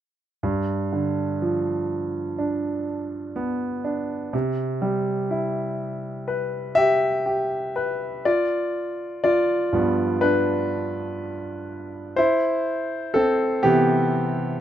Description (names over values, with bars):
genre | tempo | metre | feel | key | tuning
pop | 62 BPM | 4/4 | straight | unclear | A4 = 440 Hz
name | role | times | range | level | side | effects
clear concert grand piano | solo | 0.4-14.6 s | G2 to E5 | -21 LUFS | equal | none
room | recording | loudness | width
moderate studio reverb, RT60 0.5 s | rough home demo mix | -21 LUFS | side -11 dB against mid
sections
0.4-8.3 A section; 8.3-14.6 B section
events
grand piano solo 8.3-14.6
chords
0.4 G7; 4.3 Cmaj7; 8.3 G7; 12.2 Cmaj7